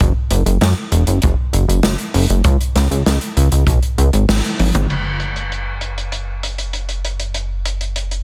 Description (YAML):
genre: synthwave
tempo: 98 BPM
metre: 4/4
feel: straight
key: unclear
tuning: A4 = 439 Hz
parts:
  - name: chorused synth bass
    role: bass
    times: 0.0-8.2 s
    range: E1 to F#2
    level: -19 LUFS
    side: equal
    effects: none
  - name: kick drum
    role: drums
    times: 0.0-3.8 s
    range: none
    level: -19 LUFS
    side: equal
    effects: none
  - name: open jazz drum kit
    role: drums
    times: 0.0-8.2 s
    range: crash cymbal, hi-hat, snare drum, toms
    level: -23 LUFS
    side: equal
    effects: low-pass filter on hats, low-pass filter on toms, low-pass filter on cymbals, low-pass filter on snare, low-pass filter on room
room: light reverb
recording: dense, heavily limited modern master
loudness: -17 LUFS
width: mono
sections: 0.0-4.9 A section; 4.9-8.2 B section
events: kick drops out 4.3-4.9; band accent 4.3-4.6; drum fill 4.6-4.9; filter sweep on drum 4.9-8.2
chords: none